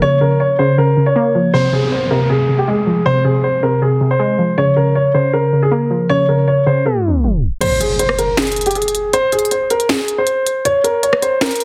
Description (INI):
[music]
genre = hip hop, trap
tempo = 158 BPM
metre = 4/4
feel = half-time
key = unclear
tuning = A4 = 442 Hz
[part]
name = warm grand piano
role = melody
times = 0.0-11.6 s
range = G4 to Db5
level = -18 LUFS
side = equal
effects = none
[part]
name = warbly dusty pluck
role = accompaniment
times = 0.0-7.6 s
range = C3 to Bb3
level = -18 LUFS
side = equal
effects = chorus
[part]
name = downlifter and impact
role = sound effects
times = 1.5-4.6, 7.6-9.1 s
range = none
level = -28 LUFS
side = equal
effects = none
[part]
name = trap drum kit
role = drums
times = 7.6-11.6 s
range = crash cymbal, finger snaps, hi-hat, rim click, snare drum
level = -21 LUFS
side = equal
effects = none
[sound]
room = moderate plate reverb, RT60 1.2 s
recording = heavily compressed radio sound, tape stop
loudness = -15 LUFS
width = mono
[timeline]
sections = 0.0-1.5 A section; 1.5-7.6 B section; 7.6-11.6 C section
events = break 0.0-1.5; tape stop 6.9-7.6; kick muted 7.6-11.6; impact 7.6-9.1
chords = 0.0 Bbm; 1.5 Fm; 4.6 Bbm; 7.6 N.C.